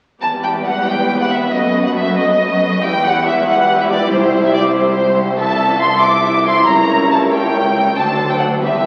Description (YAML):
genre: classical, dramatic, fast romantic movement for symphony orchestra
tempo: 93 BPM (dotted quarters)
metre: 6/8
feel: rubato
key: E minor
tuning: A4 = 440 Hz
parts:
  - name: warm symphonic violin section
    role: melody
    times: 0.2-8.9 s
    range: C5 to D6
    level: -17 LUFS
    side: equal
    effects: none
  - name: warm symphonic violin section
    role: second line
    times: 0.2-8.9 s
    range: F#4 to E5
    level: -24 LUFS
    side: equal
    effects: none
  - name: warm symphonic viola section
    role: accompaniment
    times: 0.2-8.9 s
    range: E3 to E4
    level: -22 LUFS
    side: equal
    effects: none
  - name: concert harp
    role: arpeggios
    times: 0.2-8.9 s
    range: E2 to E5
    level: -28 LUFS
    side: equal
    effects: none
  - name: rich symphonic cello section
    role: bass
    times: 0.2-8.9 s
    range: C2 to F#2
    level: -23 LUFS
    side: equal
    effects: none
room: wet scoring stage reverb, RT60 1.5 s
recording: very old 78 rpm record, vinyl crackle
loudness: -15 LUFS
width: mono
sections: 0.2-8.9 A section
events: none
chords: 0.2 Em; 1.5 B7/F#; 2.8 Em; 4.1 C; 5.4 Am/C; 6.7 C#dim7; 8.0 D7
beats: | 0.23 0.88 | 1.53 2.18 | 2.83 3.48 | 4.12 4.76 | 5.39 6.03 | 6.67 7.32 | 7.97 8.62